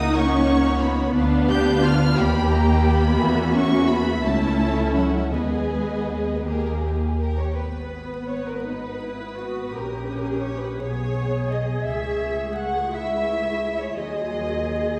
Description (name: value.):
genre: classical, slow romantic movement for string orchestra.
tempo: 52-61 BPM (dotted quarters).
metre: 6/8.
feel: rubato.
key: G# minor.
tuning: A4 = 439 Hz.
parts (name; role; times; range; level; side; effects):
warm symphonic violin section; melody; 0.0-15.0 s; F#5 to G6; -35 LUFS; equal; none.
warm symphonic violin section; second line; 0.0-15.0 s; G4 to G5; -31 LUFS; equal; none.
warm symphonic viola section; accompaniment; 0.0-15.0 s; F#3 to B4; -28 LUFS; equal; none.
clear symphonic double bass section; bass; 0.0-15.0 s; G#1 to E2; -27 LUFS; equal; none.
dark symphonic cello section; bass; 0.0-15.0 s; F#3 to G#4; -29 LUFS; equal; none.
room: wet scoring stage reverb, RT60 1.6 s.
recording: heard from further back in the room, vinyl crackle.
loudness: -22 LUFS.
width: mono.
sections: 0.0-7.6 A section; 7.6-15.0 B section.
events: none.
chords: 0.0 A#m/C#; 1.1 G7/D; 2.2 D#; 3.2 E; 4.2 A/C#; 5.3 G#m/D#; 6.4 D#; 7.6 G#m; 9.7 D#7/A#; 10.8 G#m/B; 11.9 C#m; 14.0 G#7/D#.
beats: 0.16 | 1.15 2.17 | 3.18 4.23 | 5.32 6.45 | 7.57 8.66 | 9.72 10.78 | 11.86 12.93 | 13.98.